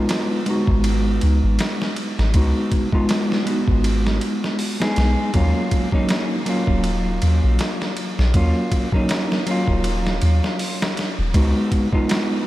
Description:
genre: trip hop.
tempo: 80 BPM.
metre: 4/4.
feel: swing 56% on 16ths.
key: Eb minor.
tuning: A4 = 441 Hz.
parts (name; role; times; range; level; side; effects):
mellow electric guitar; accompaniment; 0.0-12.4 s; Gb3 to Ab4; -21 LUFS; equal; harmonic tremolo, low-pass filter, tape echo.
boom bap sampler-style drum kit; drums; 0.1-12.3 s; hi-hat, kick drum, ride cymbal, snare drum; -23 LUFS; equal; none.
soft 808-style bass; bass; 0.7-11.5 s; Eb1 to Eb2; -18 LUFS; equal; none.
room: moderate huge ambient reverb, RT60 8.0 s.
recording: dreamy mix soaked in reverb, vinyl crackle.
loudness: -17 LUFS.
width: side -16 dB against mid.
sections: 0.0-12.5 A section.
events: filter sweep on clean electric guitar 0.0-12.5.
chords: 0.0 Db9sus4 (rootless); 5.3 Ebm7; 11.3 Db9sus4.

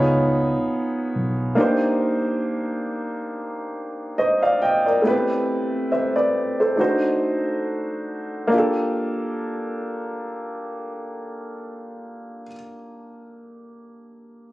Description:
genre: R&B.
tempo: 69 BPM.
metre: 4/4.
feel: swing 56% on 16ths.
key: G minor.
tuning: A4 = 440 Hz.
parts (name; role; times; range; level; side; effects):
warm upright piano; accompaniment; 0.0-14.5 s; A3 to G5; -21 LUFS; equal; none.
vintage muted fingered electric bass; bass; 0.0-1.5 s; B1 to C#2; -23 LUFS; equal; none.
room: moderate echo chamber reverb, RT60 2.2 s.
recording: recorded on a phone in the room, studio ambience.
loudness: -20 LUFS.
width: side -17 dB against mid.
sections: 0.0-8.5 A section; 8.5-12.0 B section.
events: none.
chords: 0.0 C#9; 1.6 Cm9; 5.1 Am7; 6.8 D7b9; 8.5 Gm7.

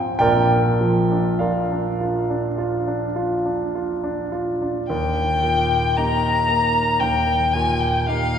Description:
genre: classical, romantic duo for violin and grand piano.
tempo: 50-58 BPM.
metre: 4/4.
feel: rubato.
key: Eb major.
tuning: A4 = 442 Hz.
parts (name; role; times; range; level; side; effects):
clear grand piano; accompaniment; 0.0-8.4 s; Bb1 to Ab5; -20 LUFS; right 1 dB; none.
warm violin; melody; 4.9-8.4 s; F5 to Bb5; -19 LUFS; left 3 dB; none.
room: wet concert hall reverb, RT60 2.4 s.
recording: heard from further back in the room.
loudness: -18 LUFS.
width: side -8 dB against mid.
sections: 0.0-4.9 A section; 4.9-8.4 B section.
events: none.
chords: 0.2 Bb; 4.9 Eb.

